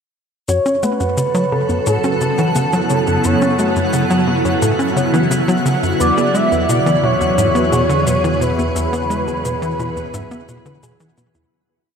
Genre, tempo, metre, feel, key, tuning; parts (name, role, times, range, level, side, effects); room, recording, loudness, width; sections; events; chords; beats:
ambient, sequencer-driven space music; 87 BPM; 4/4; straight; F# minor; A4 = 439 Hz
pulse-width lead; melody; 0.5-11.2 s; A4 to E5; -20 LUFS; equal; chorus, vintage 12-bit sampler grit, shimmer reverb, tape echo
evolving wavetable pad; sustained chords; 1.3-11.5 s; C#3 to A4; -20 LUFS; right 1 dB; ensemble chorus, built-in reverb, phaser, shimmer reverb
thumb-piano-like synth pluck; arpeggios; 0.5-11.5 s; E4 to F#5; -26 LUFS; left 1 dB; chorus, auto-pan, shimmer reverb, tape echo
tight sequencer bass; riff; 0.5-11.5 s; E2 to C#4; -19 LUFS; equal; shimmer reverb, tape echo
analog drone; bass; 1.5-11.5 s; E2 to F#2; -28 LUFS; equal; chorus
shaker and congas; percussion; 0.5-11.5 s; -28 LUFS; left 4 dB; tape echo
twinkling granular texture; texture; 1.4-11.5 s; F#4 to F#5; -26 LUFS; right 1 dB; built-in reverb, shimmer reverb
wet huge ambient reverb, RT60 7.3 s; -14 LUFS; side -6 dB against mid
0.5-11.5 A section
fade-in on synth drone 0.5-11.5; fade-out 7.8-11.5
0.5 F#m; 6.0 E
| 0.49 1.18 1.87 2.56 | 3.25 3.94 4.62 5.32 | 6.00 6.69 7.38 8.07 | 8.76 9.45 10.14 10.83